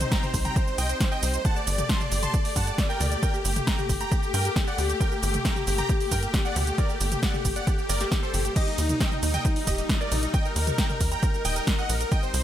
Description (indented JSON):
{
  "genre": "uplifting trance",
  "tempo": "135 BPM",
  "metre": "4/4",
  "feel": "straight",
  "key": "G harmonic minor",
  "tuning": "A4 = 440 Hz",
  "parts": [
    { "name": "supersaw chords", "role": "melody", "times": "0.0-12.4 s", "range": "Eb4 to C6", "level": "-30 LUFS", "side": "equal", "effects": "sidechain pumping, ping-pong delay" },
    { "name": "warm baby grand piano", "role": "second line", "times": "0.0-12.4 s", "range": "Eb4 to C6", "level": "-36 LUFS", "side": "right 2 dB", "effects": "sidechain pumping, ping-pong delay" },
    { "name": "dark studio string section", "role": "sustained chords", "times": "0.0-12.4 s", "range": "G3 to G4", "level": "-35 LUFS", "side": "left 3 dB", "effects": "sidechain pumping" },
    { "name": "tight sequencer bass", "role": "bass", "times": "0.0-12.4 s", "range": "Eb1 to G2", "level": "-27 LUFS", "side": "equal", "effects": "sidechain pumping" },
    { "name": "punchy analog drum machine", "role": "drums", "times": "0.0-12.4 s", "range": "crash cymbal, hi-hat, ride cymbal, shaker, snare drum, toms", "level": "-30 LUFS", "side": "equal", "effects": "overdrive, sidechain pumping on hats, sidechain pumping on cymbals, sidechain pumping on perc, sidechain pumping on toms" },
    { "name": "electronic kick drum", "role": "drums", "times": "0.1-12.2 s", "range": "none", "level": "-25 LUFS", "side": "equal", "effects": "overdrive" }
  ],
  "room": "little or no reverb",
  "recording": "none",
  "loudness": "-23 LUFS",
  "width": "side -11 dB against mid",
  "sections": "0.0-12.4 A section",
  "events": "none",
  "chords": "0.0 Cm; 1.4 Gmadd9; 8.6 Eb"
}